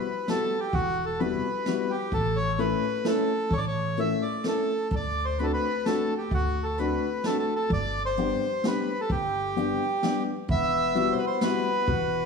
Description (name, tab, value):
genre	musette waltz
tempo	129 BPM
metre	3/4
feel	straight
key	unclear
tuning	A4 = 441 Hz
part	bandoneon	melody	0.0-12.3 s	F#4 to E5	-28 LUFS	right 1 dB	none
part	warm upright piano	accompaniment	0.0-11.7 s	G3 to A4	-29 LUFS	left 5 dB	none
part	jazz brush drum kit	drums	0.3-12.0 s	hi-hat, kick drum, snare drum	-33 LUFS	right 2 dB	none
part	upright bass	bass	0.7-12.3 s	E1 to D2	-31 LUFS	equal	none
part	mellow accordion	second line	10.5-12.3 s	B3 to F#4	-30 LUFS	right 1 dB	none
room	moderate recital hall reverb, RT60 1.7 s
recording	small room ambience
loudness	-24 LUFS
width	side -5 dB against mid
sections	0.0-10.5 A section; 10.5-12.3 A section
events	none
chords	0.0 Emadd9; 2.1 A; 4.9 D7; 7.7 G; 10.5 Emadd9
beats	0.27 | 0.73 1.20 1.66 | 2.12 2.59 3.05 | 3.52 3.98 4.45 | 4.92 5.39 5.85 | 6.31 6.78 7.24 | 7.70 8.16 8.62 | 9.09 9.55 10.02 | 10.49 10.96 11.42 | 11.88